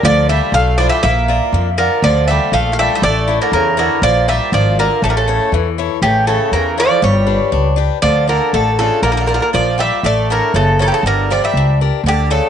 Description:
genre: greek folk, Greek bouzouki band.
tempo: 120 BPM.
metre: 2/4.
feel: straight.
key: A phrygian dominant.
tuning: A4 = 440 Hz.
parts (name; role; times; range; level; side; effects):
Greek bouzouki; melody; 0.0-12.5 s; G4 to F5; -16 LUFS; equal; none.
Greek bouzouki; second line; 0.0-12.5 s; C#3 to Bb3; -20 LUFS; right 12 dB; none.
picked swing-style acoustic guitar; accompaniment; 0.0-12.5 s; D3 to D5; -20 LUFS; left 14 dB; none.
upright bass; bass; 0.0-12.4 s; F#1 to F2; -16 LUFS; equal; none.
room: light reverb, small room ambience.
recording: 1960s-style stereo with parts hard left and right, nothing above 10.4 kHz.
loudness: -12 LUFS.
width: side -8 dB against mid.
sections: 0.0-6.0 A section; 6.0-12.5 B section.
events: none.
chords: 0.0 Dmadd9; 1.0 Bb; 2.0 Dm; 3.0 A; 4.0 Bb; 5.0 A; 7.0 G; 8.0 Dm; 9.0 Bb; 10.0 A; 11.0 Gm.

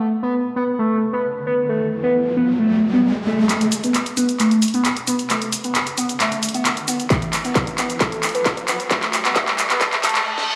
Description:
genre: driving peak-time techno.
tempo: 133 BPM.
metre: 4/4.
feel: straight.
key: unclear.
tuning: A4 = 440 Hz.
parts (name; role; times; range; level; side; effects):
overdriven synth lead; riff; 0.0-10.6 s; A3 to B3; -22 LUFS; equal; distortion, phaser, tube saturation, lush chorus, sidechain pumping, digital delay.
riser and reverse cymbal; sound effects; 1.4-10.6 s; none; -30 LUFS; equal; none.
techno drum kit; drums; 3.5-10.5 s; handclaps, hi-hat, shaker, snare drum; -23 LUFS; equal; none.
electronic kick drum; drums; 7.1-10.1 s; none; -25 LUFS; equal; distortion.
room: wet lush hall reverb, RT60 2.0 s.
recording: played on a big sound system in a bare room, large studio reverb, high-pass filter.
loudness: -19 LUFS.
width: mono.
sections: 0.0-3.5 A section; 3.5-10.6 B section.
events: riser 1.4-3.5, 3.5-10.6; build-up 3.5-10.6; drum fill 3.5-10.3, 10.4; filter sweep on analog synth lead 3.5-10.6; filter sweep 3.5-10.6; reverse cymbal 9.8-10.6; break 10.3.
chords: none.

